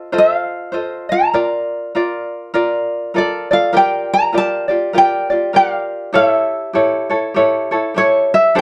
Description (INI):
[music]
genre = Hawaiian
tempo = 100 BPM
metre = 4/4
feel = swing 60% on 8ths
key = Bb major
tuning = A4 = 440 Hz
[part]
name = tenor ukulele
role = melody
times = 0.0-8.6 s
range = C#5 to Bb5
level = -16 LUFS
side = equal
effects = none
[part]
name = tenor ukulele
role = accompaniment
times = 0.0-8.6 s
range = D4 to Eb5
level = -19 LUFS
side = equal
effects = none
[sound]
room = moderate studio reverb, RT60 0.6 s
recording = dark, warm production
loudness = -16 LUFS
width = mono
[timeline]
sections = 0.0-3.7 A section; 3.7-8.6 B section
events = none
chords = 0.0 F7; 1.3 Bbmaj7; 3.7 Gm7; 6.2 A7